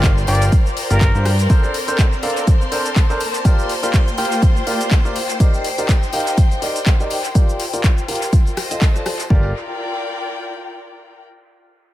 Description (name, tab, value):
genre	piano house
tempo	123 BPM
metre	4/4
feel	swing 57% on 16ths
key	G minor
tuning	A4 = 438 Hz
part	string machine, violins	sustained chords	0.0-9.3 s	C5 to C6	-28 LUFS	equal	ensemble chorus, sidechain pumping
part	bright grand piano	riff	0.0-9.5 s	D4 to G5	-24 LUFS	equal	sidechain pumping, low-pass filter, dub echo
part	fat analog bass	bass	0.0-1.5, 9.3-9.5 s	G1 to G2	-16 LUFS	equal	sidechain pumping
part	electronic kick drum	drums	0.0-9.4 s	none	-14 LUFS	equal	overdrive, studio reverb
part	house drum kit	drums	0.0-9.3 s	handclaps, hi-hat, rim click, shaker	-26 LUFS	left 1 dB	overdrive, studio reverb, dub echo
part	tambourine	percussion	0.0-9.3 s	none	-36 LUFS	left 8 dB	none
part	rich chamber string section	texture	0.0-11.2 s	Bb3 to A5	-27 LUFS	left 2 dB	sidechain pumping
part	trumpet with plunger mute	melody	0.3-1.3 s	Bb4 to D5	-29 LUFS	equal	dub echo
room	light reverb, small room ambience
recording	echo-heavy mix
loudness	-15 LUFS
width	side -14 dB against mid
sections	0.0-9.3 A section; 9.3-11.3 B section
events	filter sweep on grand piano 0.0-9.3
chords	0.0 Gm7; 1.5 Bbmaj9; 3.2 Gm7/Bb; 5.2 Ebmaj7; 7.4 Gm7; 8.3 F7; 9.3 Gm7